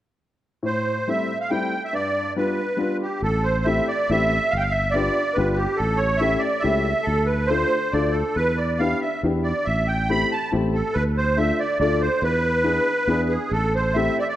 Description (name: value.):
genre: musette waltz.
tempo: 139 BPM.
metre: 3/4.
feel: rubato.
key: A minor.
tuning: A4 = 439 Hz.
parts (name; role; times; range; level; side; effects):
clear upright piano; accompaniment; 0.6-14.2 s; G2 to A4; -26 LUFS; left 3 dB; none.
musette accordion; melody; 0.7-14.4 s; G4 to B5; -22 LUFS; right 2 dB; none.
sustaining fretless electric bass; bass; 3.2-14.1 s; G1 to E2; -25 LUFS; equal; none.
room: moderate scoring stage reverb, RT60 1.9 s.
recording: none.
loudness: -20 LUFS.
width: side -13 dB against mid.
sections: 0.6-3.2 A section; 3.2-14.4 B section.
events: none.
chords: 0.6 Am7; 1.9 G7; 3.2 Am7; 4.5 G7; 5.8 A7; 7.1 Dm; 8.4 Em7; 9.7 Am7; 11.0 Dm; 12.2 E7; 13.5 Am7.